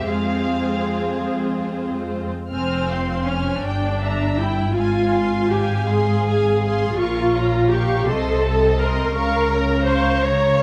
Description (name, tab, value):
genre	classical, slow romantic movement for string orchestra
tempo	48-57 BPM (dotted quarters)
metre	6/8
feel	rubato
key	F minor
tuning	A4 = 439 Hz
part	rich symphonic violin section	melody	0.0-10.6 s	F5 to F6	-33 LUFS	equal	none
part	warm symphonic violin section	second line	0.0-10.6 s	F4 to Ab5	-31 LUFS	equal	none
part	rich symphonic viola section	accompaniment	0.0-10.6 s	Ab3 to Db5	-23 LUFS	equal	none
part	clear symphonic double bass section	bass	0.0-10.6 s	F1 to F2	-27 LUFS	equal	none
part	rich symphonic cello section	bass	0.0-10.6 s	F2 to Ab4	-27 LUFS	equal	none
room	moderate scoring stage reverb, RT60 1.9 s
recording	none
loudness	-20 LUFS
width	mono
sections	0.0-2.5 A section; 2.5-10.6 A section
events	none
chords	0.1 Fm; 3.6 Edim/G; 4.8 Fm/Ab; 7.0 Bbm; 8.1 Adim/C; 9.2 Bbm/Db